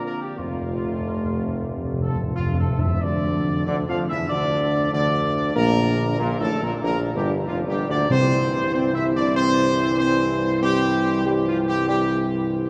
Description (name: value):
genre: classical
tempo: 95 BPM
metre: 4/4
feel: straight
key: unclear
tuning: A4 = 440 Hz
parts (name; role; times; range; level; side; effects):
- warm trumpet section; melody; 0.0-12.2 s; F4 to F5; -28 LUFS; equal; none
- clear trombone section; sustained chords; 0.0-12.7 s; F2 to Bb3; -32 LUFS; equal; none
- mellow French horn section; sustained chords; 0.0-12.2 s; F3 to F4; -30 LUFS; equal; none
- warm tuba; bass; 0.0-12.7 s; F1 to F2; -27 LUFS; equal; none
- timpani; percussion; 0.4-3.0, 8.1-9.0 s; F2 to C3; -29 LUFS; equal; none
room: wet cathedral reverb, RT60 6.4 s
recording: none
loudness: -22 LUFS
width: mono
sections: 0.0-3.0 A section; 3.0-12.7 B section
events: timpani fill 0.4-3.0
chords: 0.4 F; 3.0 Bb/D; 8.1 C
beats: | 0.38 1.05 1.71 2.36 | 3.03 3.67 4.30 4.93 | 5.56 6.20 6.83 7.47 | 8.10 8.73 9.36 9.99 | 10.62 11.25 11.88 12.50